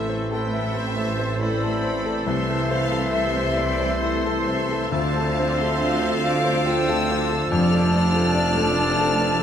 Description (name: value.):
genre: classical, romantic movement for piano and orchestra.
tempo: 66-74 BPM.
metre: 3/4.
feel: rubato.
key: A minor.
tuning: A4 = 441 Hz.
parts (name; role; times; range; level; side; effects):
clear concert grand piano; melody; 0.0-9.4 s; C2 to F5; -25 LUFS; left 2 dB; none.
rich symphonic violin section; melody; 0.0-9.4 s; E5 to F6; -30 LUFS; left 4 dB; none.
clear clarinet; second line; 0.0-9.4 s; C4 to D4; -34 LUFS; left 1 dB; none.
concert flute; second line; 0.0-9.4 s; A4 to A5; -29 LUFS; left 2 dB; none.
warm oboe; second line; 0.0-9.4 s; A4; -33 LUFS; right 3 dB; none.
dark bassoon; accompaniment; 0.0-9.4 s; E3 to F3; -33 LUFS; right 3 dB; none.
rich symphonic viola section; accompaniment; 0.0-9.4 s; F3 to C5; -32 LUFS; equal; none.
warm French horn section; sustained chords; 0.0-9.4 s; A3 to F4; -31 LUFS; left 2 dB; none.
bright trumpet section; stabs; 0.0-9.4 s; C5 to D5; -31 LUFS; equal; none.
rich symphonic cello section; bass; 0.0-9.4 s; F2 to D3; -33 LUFS; right 3 dB; none.
warm symphonic double bass section; bass; 0.0-9.4 s; F1 to D2; -31 LUFS; right 2 dB; none.
warm tuba; bass; 0.0-9.4 s; F1 to D2; -32 LUFS; right 5 dB; none.
timpani; percussion; 0.0-0.9 s; A2; -39 LUFS; right 1 dB; none.
clear studio violin section; second line; 0.5-9.4 s; B4 to F5; -32 LUFS; left 4 dB; none.
room: moderate scoring stage reverb, RT60 1.7 s.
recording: none.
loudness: -19 LUFS.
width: side -9 dB against mid.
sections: 0.0-9.4 A section.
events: none.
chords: 0.0 Am; 2.3 Am/C; 4.9 Dm7; 7.5 Dm/F.